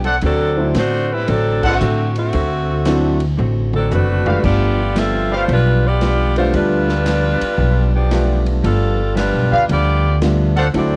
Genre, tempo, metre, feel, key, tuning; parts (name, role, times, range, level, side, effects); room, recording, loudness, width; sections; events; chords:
jazz, big band swing; 114 BPM; 4/4; swing 66% on 8ths; A4 = 441 Hz
bright saxophone section; melody; 0.0-11.0 s; D3 to E5; -22 LUFS; equal; cassette tape
vintage hollow-body jazz guitar; accompaniment; 0.0-11.0 s; G2 to F#4; -26 LUFS; equal; cassette tape
upright bass; bass; 0.0-11.0 s; F#1 to A2; -20 LUFS; equal; tube saturation
swinging big-band drum kit; drums; 0.0-10.9 s; crash cymbal, hi-hat, kick drum, ride cymbal, snare drum, toms; -30 LUFS; equal; cassette tape
warm trumpet section; stabs; 0.1-5.4, 9.5-10.7 s; G4 to F#5; -21 LUFS; equal; cassette tape
warm upright piano; accompaniment; 0.6-11.0 s; F#3 to F4; -23 LUFS; equal; cassette tape
light reverb; home recording on cassette; -16 LUFS; mono
0.0-11.0 A section
band accent 1.5; drum fill 3.4-4.4
0.2 D7; 4.4 G7